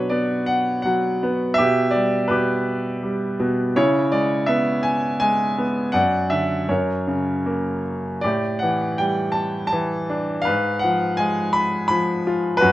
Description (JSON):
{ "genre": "classical, lyrical solo piano", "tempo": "82 BPM", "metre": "3/4", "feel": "rubato", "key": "unclear", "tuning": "A4 = 440 Hz", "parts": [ { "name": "bright concert grand piano", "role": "solo", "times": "0.0-12.7 s", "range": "F#2 to B5", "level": "-19 LUFS", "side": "equal", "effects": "none" } ], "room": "moderate studio reverb, RT60 0.5 s", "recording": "minimal, uncompressed stereo recording", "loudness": "-19 LUFS", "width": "side -15 dB against mid", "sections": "0.0-12.7 A section", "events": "none", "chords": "0.0 Bm; 1.6 G6/B; 3.8 C#m7; 5.9 Dadd9/F#; 6.7 F#; 8.2 A7sus4; 10.5 G#m6" }